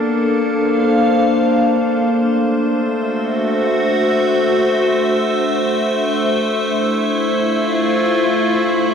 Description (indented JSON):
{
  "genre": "ambient",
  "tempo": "free time",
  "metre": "none",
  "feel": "none",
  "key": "unclear",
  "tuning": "A4 = 439 Hz",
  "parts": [
    { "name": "evolving wavetable pad", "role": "solo", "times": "0.0-8.9 s", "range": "A3 to F5", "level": "-14 LUFS", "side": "left 1 dB", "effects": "chorus, built-in reverb" }
  ],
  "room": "wet lush hall reverb, RT60 2.6 s",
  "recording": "none",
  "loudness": "-14 LUFS",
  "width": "side -7 dB against mid",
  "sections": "0.0-8.9 A section",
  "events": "none",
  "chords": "0.0 Bbmaj9; 2.3 D9; 5.9 Fmaj7"
}